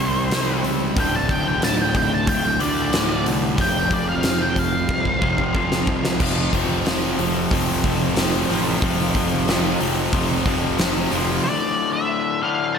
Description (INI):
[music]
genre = quiet-loud alternative rock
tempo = 92 BPM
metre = 4/4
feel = straight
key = unclear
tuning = A4 = 440 Hz
[part]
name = octave-fuzz lead guitar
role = melody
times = 0.0-6.2, 11.4-12.8 s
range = C5 to A5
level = -24 LUFS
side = equal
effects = distortion, analog delay
[part]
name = crunchy overdriven guitar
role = riff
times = 0.0-12.8 s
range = D2 to C4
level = -25 LUFS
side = left 9 dB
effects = slapback echo
[part]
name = thick fuzz guitar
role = riff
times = 0.0-11.4 s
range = D2 to C4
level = -25 LUFS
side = right 9 dB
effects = distortion, slapback echo
[part]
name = fuzz picked electric bass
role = bass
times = 0.0-11.4 s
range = D1 to D2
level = -27 LUFS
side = equal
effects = overdrive
[part]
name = huge arena drum kit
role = drums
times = 0.3-11.3 s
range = crash cymbal, hi-hat, kick drum, snare drum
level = -23 LUFS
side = equal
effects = none
[part]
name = tight distorted guitar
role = riff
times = 6.2-11.4 s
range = F2 to F3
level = -29 LUFS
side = right 2 dB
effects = distortion
[sound]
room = moderate concert hall reverb, RT60 2.1 s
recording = big arena sound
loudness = -18 LUFS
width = side -6 dB against mid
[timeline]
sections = 0.0-6.2 A section; 6.2-11.4 B section; 11.4-12.8 C section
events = lead electric guitar solo 0.0-6.2; drum fill 4.9-6.2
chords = 0.0 C5; 1.0 D5; 3.6 F5; 11.4 D5